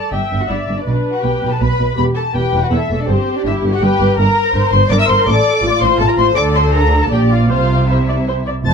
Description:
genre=quick classical-period movement for string orchestra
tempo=162 BPM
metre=3/4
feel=rubato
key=unclear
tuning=A4 = 439 Hz
part: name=muted symphonic violin section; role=melody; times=0.0-8.7 s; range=C5 to A6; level=-19 LUFS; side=left 3 dB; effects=none
part: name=muted symphonic violin section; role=second line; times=0.0-8.7 s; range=C4 to A5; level=-20 LUFS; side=left 5 dB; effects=none
part: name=muted symphonic viola section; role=accompaniment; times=0.0-8.7 s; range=F4 to E5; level=-20 LUFS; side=equal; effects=none
part: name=muted symphonic cello section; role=bass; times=0.1-8.7 s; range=E2 to D3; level=-19 LUFS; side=right 1 dB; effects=none
part: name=muted symphonic double bass section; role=bass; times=0.1-8.7 s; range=E1 to D2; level=-18 LUFS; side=right 2 dB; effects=none
room=light reverb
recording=dark, warm production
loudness=-12 LUFS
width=side -6 dB against mid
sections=0.0-8.7 A section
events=none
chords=0.0 G5; 0.9 Bm; 2.0 Em; 3.1 C5/G; 5.3 F/A; 6.4 D5; 7.1 Bb; 7.5 C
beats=0.13 0.50 | 0.87 1.24 1.61 | 1.98 2.35 2.72 | 3.09 3.46 3.82 | 4.18 4.54 4.91 | 5.27 5.63 6.00 | 6.36 6.73 7.11 | 7.50 7.88 8.27 | 8.65

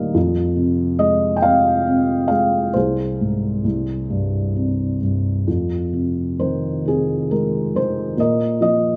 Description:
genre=classical, lyrical solo piano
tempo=67 BPM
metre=3/4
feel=uneven beats, rubato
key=F minor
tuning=A4 = 440 Hz
part: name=felt-muted upright piano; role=solo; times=0.0-9.0 s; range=C2 to G5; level=-19 LUFS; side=equal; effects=none
room=moderate concert hall reverb, RT60 1.9 s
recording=none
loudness=-20 LUFS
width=mono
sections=0.0-9.0 A section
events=none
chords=0.2 Fm; 2.7 Ab/C; 3.6 C5; 5.5 Fm7; 8.2 Bb5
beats=| 0.15 1.00 1.87 | 2.75 3.65 4.55 | 5.48 6.40 7.30 | 8.18

